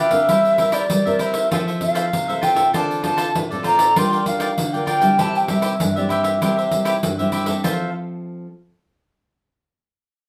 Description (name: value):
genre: samba and choro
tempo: 98 BPM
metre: 4/4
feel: straight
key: F major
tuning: A4 = 439 Hz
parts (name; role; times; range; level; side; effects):
- baroque flute; melody; 0.0-7.9 s; D5 to C6; -21 LUFS; equal; none
- cavaquinho; accompaniment; 0.0-7.9 s; D4 to G5; -28 LUFS; equal; none
- nylon-string guitar; accompaniment; 0.0-8.5 s; G2 to Bb4; -26 LUFS; equal; none
- pandeiro; percussion; 0.1-7.8 s; none; -28 LUFS; equal; none
room: wet studio reverb, RT60 0.6 s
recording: band playing live in one room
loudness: -19 LUFS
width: mono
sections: 0.0-7.6 A section; 7.6-10.1 B section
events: none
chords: 0.3 C7/G; 1.5 Fmaj7; 2.7 Dm7; 4.0 Gm7; 5.2 C; 7.6 Fmaj7